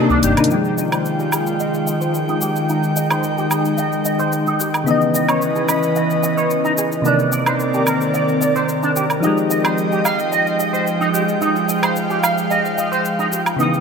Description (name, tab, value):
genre	sunset chillout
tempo	110 BPM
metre	4/4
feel	straight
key	F minor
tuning	A4 = 435 Hz
part	soft electric-piano-like synth keys	accompaniment	0.0-13.8 s	C3 to Eb6	-22 LUFS	moving between left 4 dB and right 4 dB	chorus, auto-pan, vintage 12-bit sampler grit, ping-pong delay
part	airy breathy pad	sustained chords	0.0-13.8 s	C3 to Eb6	-19 LUFS	equal	chorus
part	electric guitar with an envelope filter	arpeggios	0.1-13.7 s	D4 to F5	-22 LUFS	right 2 dB	ensemble chorus, low-pass filter, ping-pong delay
part	electronic shaker, hi-hat and woodblock	drums	0.1-13.8 s	none	-24 LUFS	right 1 dB	gated reverb
room	wet lush hall reverb, RT60 1.6 s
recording	bright 1980s-style digital production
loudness	-16 LUFS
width	side -6 dB against mid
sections	0.5-13.8 A section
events	filter sweep on clean electric guitar 0.5-13.8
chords	0.0 Cm9; 0.5 Fm9; 4.9 Dbm9; 7.1 Cm9; 9.2 Fm9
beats	| 0.51 1.05 1.60 2.14 | 2.69 3.23 3.78 4.33 | 4.87 5.42 5.96 6.51 | 7.05 7.60 8.14 8.69 | 9.23 9.78 10.32 10.87 | 11.42 11.96 12.51 13.05 | 13.60